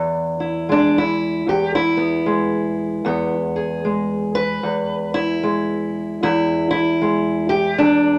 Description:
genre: acoustic country blues, solo or duo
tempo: 76 BPM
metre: 4/4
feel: swing 62% on 8ths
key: E major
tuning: A4 = 439 Hz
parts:
  - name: fingerpicked steel-string acoustic guitar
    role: solo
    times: 0.0-8.2 s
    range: E2 to B4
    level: -20 LUFS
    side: equal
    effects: none
room: moderate studio reverb, RT60 0.5 s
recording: none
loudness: -20 LUFS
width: mono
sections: 0.0-8.2 A section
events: steel-string acoustic guitar solo 0.0-8.2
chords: 0.0 E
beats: 0.69 1.48 2.27 | 3.06 3.85 4.64 5.43 | 6.22 7.01 7.80

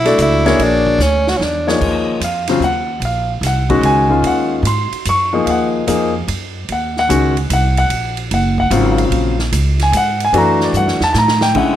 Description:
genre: modal jazz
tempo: 148 BPM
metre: 3/4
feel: swing 67% on 8ths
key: Eb dorian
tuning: A4 = 440 Hz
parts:
  - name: bright tenor saxophone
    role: melody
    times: 0.0-1.8 s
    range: C#4 to F#4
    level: -16 LUFS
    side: right 1 dB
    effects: none
  - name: upright bass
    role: bass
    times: 0.0-11.8 s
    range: Gb1 to A2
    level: -18 LUFS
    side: right 1 dB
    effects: none
  - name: warm concert grand piano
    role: accompaniment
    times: 0.1-11.8 s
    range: Db3 to Db6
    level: -15 LUFS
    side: left 2 dB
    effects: none
  - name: swinging big-band drum kit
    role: drums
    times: 0.1-11.7 s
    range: crash cymbal, hi-hat, kick drum, ride cymbal, snare drum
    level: -23 LUFS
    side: right 3 dB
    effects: none
room: light reverb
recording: none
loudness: -13 LUFS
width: side -11 dB against mid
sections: 0.0-1.8 A section; 1.8-11.6 B section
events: drum fill 1.0-1.8, 10.7-11.6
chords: 0.0 C#m/B; 0.6 A#7alt; 1.8 Ebm9; 10.3 Em11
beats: 0.18 | 0.59 1.00 1.40 | 1.81 2.21 2.62 | 3.03 3.43 3.84 | 4.25 4.65 5.06 | 5.47 5.87 6.28 | 6.68 7.09 7.50 | 7.90 8.31 8.72 | 9.12 9.53 9.93 | 10.34 10.75 11.15 | 11.56

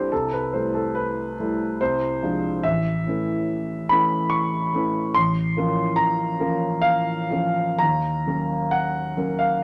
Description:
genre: classical, impressionist solo piano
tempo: 70 BPM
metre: 3/4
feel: uneven beats, rubato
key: unclear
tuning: A4 = 439 Hz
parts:
  - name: warm grand piano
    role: solo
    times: 0.0-9.6 s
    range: A1 to C#6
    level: -23 LUFS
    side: equal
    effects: none
room: moderate studio reverb, RT60 0.8 s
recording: none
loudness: -23 LUFS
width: mono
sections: 0.0-9.6 A section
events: none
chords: 0.1 Am9/C; 1.8 Fm6/C; 2.6 Aadd9; 5.2 Bbmadd9/A; 7.8 Ebm7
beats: | 0.12 0.95 1.80 | 2.63 3.49 4.32 | 5.16 5.98 6.83 | 7.81 8.72

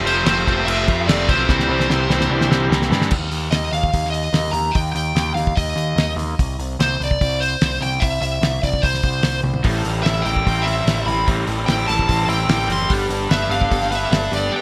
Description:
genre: indie rock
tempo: 147 BPM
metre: 4/4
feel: straight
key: unclear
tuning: A4 = 441 Hz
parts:
  - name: string machine, cellos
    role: sustained chords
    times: 0.0-3.1, 9.6-14.6 s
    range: D4 to G5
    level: -36 LUFS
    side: equal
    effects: none
  - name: electric guitar at the edge of break-up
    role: riff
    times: 0.0-3.1, 9.6-14.6 s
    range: A2 to G4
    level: -28 LUFS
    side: equal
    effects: subtle chorus, digital delay
  - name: raw garage guitar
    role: riff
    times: 0.0-3.1, 9.6-14.6 s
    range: A2 to B4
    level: -25 LUFS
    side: equal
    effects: overdrive
  - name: growling picked electric bass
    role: bass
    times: 0.0-14.5 s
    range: F1 to G2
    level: -26 LUFS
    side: equal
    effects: overdrive
  - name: smooth overdriven lead guitar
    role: melody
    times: 0.1-14.6 s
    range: C5 to C6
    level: -24 LUFS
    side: equal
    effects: digital delay
  - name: cloth-damped thuddy drum kit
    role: drums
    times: 0.1-14.4 s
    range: crash cymbal, hi-hat, kick drum, snare drum, toms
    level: -24 LUFS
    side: equal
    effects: gated reverb
room: light reverb, small room ambience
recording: bright 1980s-style digital production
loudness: -19 LUFS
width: mono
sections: 0.0-3.1 A section; 3.1-14.6 B section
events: drum fill 1.5-3.1, 9.4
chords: 0.0 Fadd9; 1.5 Cadd9; 3.1 N.C.; 9.6 Am7; 12.9 Gadd9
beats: 0.26 0.67 1.07 | 1.48 1.89 2.29 2.70 | 3.11 3.52 3.93 4.34 | 4.75 5.15 5.56 5.97 | 6.38 6.79 7.20 7.60 | 8.01 8.42 8.83 9.23 | 9.64 10.05 10.46 10.86 | 11.27 11.68 12.08 12.49 | 12.90 13.30 13.71 14.12 | 14.52

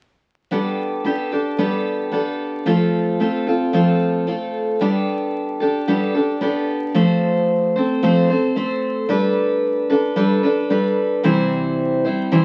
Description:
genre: pop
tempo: 112 BPM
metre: 4/4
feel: straight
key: G mixolydian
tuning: A4 = 437 Hz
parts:
  - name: picked steel-string acoustic guitar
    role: solo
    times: 0.5-12.4 s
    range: C3 to C5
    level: -19 LUFS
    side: equal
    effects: none
room: wet studio reverb, RT60 0.5 s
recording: very old 78 rpm record, vinyl crackle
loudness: -19 LUFS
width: mono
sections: 0.5-4.8 A section; 4.8-12.4 B section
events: none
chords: 0.5 Gadd9; 2.7 F; 4.8 Gadd9; 7.0 F; 9.1 Gadd9; 11.2 C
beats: | 0.51 1.05 1.59 2.12 | 2.66 3.20 3.73 4.27 | 4.81 5.34 5.88 6.42 | 6.95 7.49 8.03 8.56 | 9.10 9.63 10.17 10.71 | 11.24 11.78 12.31

